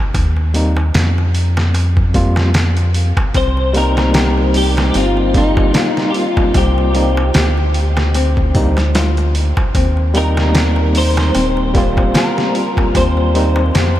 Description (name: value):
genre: trip hop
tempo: 75 BPM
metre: 4/4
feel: swing 56% on 16ths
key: unclear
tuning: A4 = 440 Hz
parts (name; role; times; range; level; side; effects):
- round analog bass; bass; 0.1-14.0 s; Eb1 to F2; -15 LUFS; equal; tube saturation
- trip hop sampler-style drum kit; drums; 0.1-14.0 s; hi-hat, kick drum, snare drum; -18 LUFS; equal; none
- darbuka; percussion; 0.1-14.0 s; none; -28 LUFS; right 1 dB; none
- overdriven tine electric piano; accompaniment; 0.5-13.6 s; G3 to F4; -20 LUFS; equal; medium tremolo, tape echo
- flamenco guitar; arpeggios; 3.3-14.0 s; C4 to G4; -23 LUFS; left 4 dB; diffuse ambient delay
- clean electric guitar; melody; 3.4-14.0 s; Eb4 to C5; -20 LUFS; equal; ensemble chorus, tape echo
room: moderate huge ambient reverb, RT60 9.1 s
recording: dreamy mix soaked in reverb, vinyl crackle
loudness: -12 LUFS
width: side -13 dB against mid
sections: 0.0-14.0 A section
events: none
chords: 0.0 Eb6; 3.3 Cm7; 9.7 Eb6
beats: | 0.15 0.95 1.75 2.55 | 3.35 4.15 4.95 5.75 | 6.55 7.35 8.15 8.95 | 9.75 10.55 11.35 12.15 | 12.95 13.75